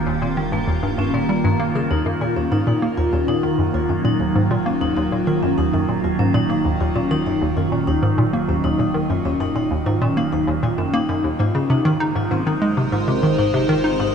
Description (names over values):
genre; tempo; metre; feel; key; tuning
ambient, sequencer-driven space music; 98 BPM; 4/4; straight; Eb dorian; A4 = 440 Hz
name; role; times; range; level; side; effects
evolving wavetable pad; sustained chords; 0.0-14.1 s; Eb3 to C5; -22 LUFS; right 2 dB; phaser, built-in reverb, shimmer reverb
warm sub bass; bass; 0.0-14.1 s; Eb1 to Ab1; -40 LUFS; equal; none
hollow square pluck; riff; 0.1-14.1 s; Eb2 to Eb4; -20 LUFS; equal; chorus, ping-pong delay
vibraphone with medium hard mallets; arpeggios; 0.2-14.1 s; G3 to Bb4; -24 LUFS; left 2 dB; auto-pan, ping-pong delay, shimmer reverb
room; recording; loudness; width
wet cathedral reverb, RT60 6.3 s; in a vast, echoing space, cassette tape; -17 LUFS; side -7 dB against mid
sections
0.0-1.9 A section; 1.9-14.1 B section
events
none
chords
0.0 Eb; 1.9 Ebm7; 11.7 Ab